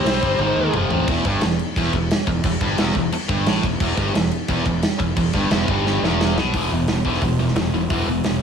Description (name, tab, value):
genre	heavy metal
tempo	176 BPM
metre	4/4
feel	straight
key	E phrygian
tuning	A4 = 444 Hz
part	high-gain lead guitar	melody	0.0-0.7 s	C5	-24 LUFS	equal	distortion, tape echo
part	high-gain distorted guitar	riff	0.0-8.4 s	E2 to C4	-21 LUFS	equal	distortion
part	fuzz fingered electric bass	bass	0.0-8.4 s	E1 to D#2	-24 LUFS	right 1 dB	overdrive
part	big rock drum kit	drums	0.1-8.3 s	crash cymbal, hi-hat, kick drum, snare drum, toms	-23 LUFS	equal	none
room	light reverb, small room ambience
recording	none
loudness	-18 LUFS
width	side -7 dB against mid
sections	0.0-1.1 A section; 1.1-6.5 B section; 6.5-8.4 C section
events	drum fill 0.4-1.1, 5.9-6.5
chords	0.4 G#5; 0.7 F5; 1.1 Em; 6.5 E5